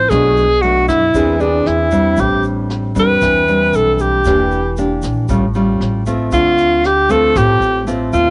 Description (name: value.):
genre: bossa nova.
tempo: 116 BPM.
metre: 4/4.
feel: straight.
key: A minor.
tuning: A4 = 436 Hz.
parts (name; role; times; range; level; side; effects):
bright alto saxophone; melody; 0.0-8.3 s; D4 to C5; -16 LUFS; equal; cassette tape, plate reverb.
nylon-string guitar; accompaniment; 0.0-8.3 s; A2 to G#4; -20 LUFS; equal; plate reverb.
upright bass; bass; 0.0-8.3 s; E1 to F#2; -23 LUFS; equal; none.
jazz brush drum kit; drums; 0.1-8.3 s; hi-hat, kick drum, rim click; -29 LUFS; equal; none.
tube shaker; percussion; 0.1-8.3 s; none; -42 LUFS; equal; none.
room: moderate booth ambience, RT60 0.2 s.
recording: home recording on cassette, nothing above 10.6 kHz.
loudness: -14 LUFS.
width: mono.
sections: 0.0-6.3 A section; 6.3-8.3 B section.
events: none.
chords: 0.1 Bm7; 1.1 E7b13; 2.2 Am11; 4.3 Em7b5; 5.3 A7b13; 6.3 Dm7.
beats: | 0.11 0.63 1.15 1.66 | 2.18 2.70 3.22 3.73 | 4.25 4.77 5.29 5.80 | 6.32 6.84 7.35 7.87.